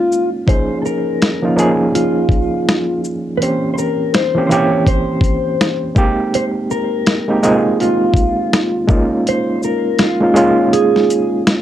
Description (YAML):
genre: lo-fi hip hop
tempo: 82 BPM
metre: 4/4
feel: swing 59% on 16ths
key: Ab major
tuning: A4 = 440 Hz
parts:
  - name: mellow electric guitar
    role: melody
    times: 0.0-11.4 s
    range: F4 to Db5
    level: -19 LUFS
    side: equal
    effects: phaser, low-pass filter, analog delay, plate reverb
  - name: overdriven reed electric piano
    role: accompaniment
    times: 0.0-11.6 s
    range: E3 to Ab4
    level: -16 LUFS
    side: right 1 dB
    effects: fast tremolo, cassette tape, low-pass filter, plate reverb
  - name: dusty soul sampler-style drum kit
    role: drums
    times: 0.1-11.6 s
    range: hi-hat, kick drum, shaker, snare drum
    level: -15 LUFS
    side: left 1 dB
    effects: overdrive
room: wet small room reverb, RT60 0.5 s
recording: cassette tape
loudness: -13 LUFS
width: side -11 dB against mid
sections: 0.0-11.6 A section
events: kick muted 10.7-11.6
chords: 0.5 Db6; 3.4 C7b9; 6.0 Abmaj9; 8.9 Eb9sus4